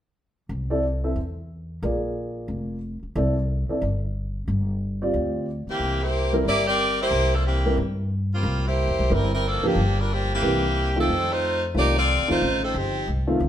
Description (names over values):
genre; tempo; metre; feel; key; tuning
jazz, big band swing; 181 BPM; 4/4; swing 61% on 8ths; C mixolydian; A4 = 439 Hz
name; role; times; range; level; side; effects
upright bass; bass; 0.5-13.5 s; F1 to G2; -25 LUFS; equal; none
warm grand piano; accompaniment; 0.7-13.4 s; Eb3 to E5; -26 LUFS; equal; none
bright saxophone section; melody; 5.7-13.1 s; E3 to D5; -23 LUFS; equal; none
room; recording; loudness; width
wet stone room reverb, RT60 1.0 s; band playing live in one room; -21 LUFS; side -10 dB against mid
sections
0.5-5.8 A section; 5.8-13.5 B section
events
none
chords
0.5 C6; 1.8 Bb7; 3.2 C69; 4.5 G7sus4; 5.8 C7; 9.8 Gm7; 10.4 C7; 11.1 F7